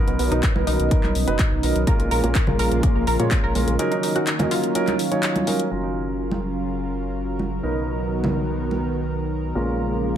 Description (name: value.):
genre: progressive house.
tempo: 125 BPM.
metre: 4/4.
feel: straight.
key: F# major.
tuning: A4 = 440 Hz.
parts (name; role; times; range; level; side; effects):
lush unison pad; sustained chords; 0.0-10.2 s; C#3 to A#4; -27 LUFS; equal; chorus, sidechain pumping.
dark baby grand piano; stabs; 0.0-10.2 s; A#2 to C#5; -26 LUFS; right 2 dB; sidechain pumping, low-pass filter, tape echo.
tight sequenced synth; arpeggios; 0.1-5.6 s; A#3 to A#4; -27 LUFS; right 1 dB; chorus, phaser, sidechain pumping, tape echo.
round analog bass; bass; 0.1-10.2 s; F#1 to A#2; -26 LUFS; equal; sidechain pumping.
house drum kit; drums; 0.1-5.7 s; handclaps, hi-hat; -28 LUFS; left 2 dB; sidechain pumping on hats.
electronic kick drum; drums; 0.4-3.4 s; none; -20 LUFS; equal; none.
congas; percussion; 0.6-8.8 s; none; -28 LUFS; right 2 dB; sidechain pumping on perc.
room: light reverb.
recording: none.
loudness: -19 LUFS.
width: side -10 dB against mid.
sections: 0.0-5.7 A section; 5.7-10.2 B section.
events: filter sweep on analog synth pad 0.0-5.7.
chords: 0.0 Bmaj7; 1.9 A#m7; 3.8 D#m7; 5.7 F#maj7; 7.6 Bmaj7; 9.6 A#m7.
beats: 0.43 0.91 1.39 | 1.87 2.35 2.83 3.31 | 3.79 4.27 4.75 5.23 | 5.71 6.19 6.67 7.15 | 7.63 8.11 8.59 9.07 | 9.55 10.03.